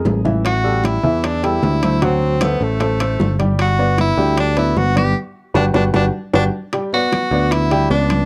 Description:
Afro-Cuban jazz; 153 BPM; 4/4; straight; G major; A4 = 439 Hz
warm baby grand piano; accompaniment; 0.0-8.2 s; E3 to G5; -23 LUFS; equal
picked electric bass; bass; 0.1-8.3 s; G1 to E2; -21 LUFS; equal
bongos; percussion; 0.1-8.3 s; -28 LUFS; equal
congas; percussion; 0.1-8.3 s; -27 LUFS; equal
timbales; percussion; 0.1-8.3 s; -29 LUFS; equal
edgy tenor saxophone; melody; 0.5-8.3 s; A3 to G4; -22 LUFS; equal; plate reverb
light reverb; dark, warm production; -17 LUFS; mono
0.0-6.7 A section; 6.7-8.3 B section
drum fill 0.0-0.4, 5.8-6.7; band accent 5.2-6.7
0.4 A7(no3); 2.0 D7; 3.6 Gmaj7

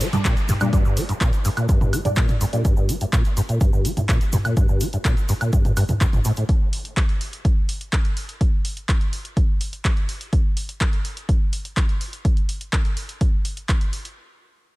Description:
acid house; 125 BPM; 4/4; straight; G minor; A4 = 440 Hz
acid bass, saw; riff; 0.0-6.4 s; G1 to G3; -22 LUFS; equal; overdrive, ensemble chorus
punchy analog drum machine; drums; 0.0-14.1 s; handclaps, hi-hat, toms, woodblock; -27 LUFS; equal; overdrive
egg shaker; percussion; 0.0-6.5 s; -36 LUFS; left 2 dB
downlifter; sound effects; 0.0-2.6 s; -36 LUFS; equal
filtered dub chord stab; stabs; 0.1-2.6 s; G3 to D5; -28 LUFS; right 1 dB; phaser, ensemble chorus, dub echo
electronic kick drum; drums; 0.2-13.8 s; -20 LUFS; equal; overdrive
digital ambience; -19 LUFS; side -20 dB against mid
0.0-14.2 A section
filter sweep on acid bass 0.0-6.5; filter sweep on synth stab 0.0-2.6
0.0 G5

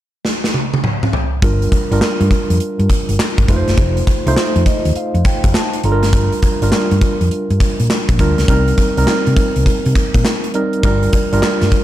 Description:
R&B, new jack swing; 102 BPM; 4/4; swing 66% on 16ths; G minor; A4 = 440 Hz
gated 80s drum kit; drums; 0.2-11.8 s; handclaps, hi-hat, kick drum, snare drum, toms; -16 LUFS; equal
tine electric piano; accompaniment; 1.4-11.8 s; G3 to Bb5; -18 LUFS; right 1 dB; medium tremolo
hollow-body short-scale fingered electric bass; bass; 1.4-11.7 s; F1 to C3; -16 LUFS; equal
small room ambience; dark, warm production; -13 LUFS; side -13 dB against mid
0.0-1.4 A section; 1.4-11.8 B section
drum fill 0.2-1.4; tine electric piano fill 4.4-6.1
0.0 N.C.; 1.4 Gm7; 3.5 F7; 5.8 Gm7; 8.5 Cm7; 10.8 Gm7

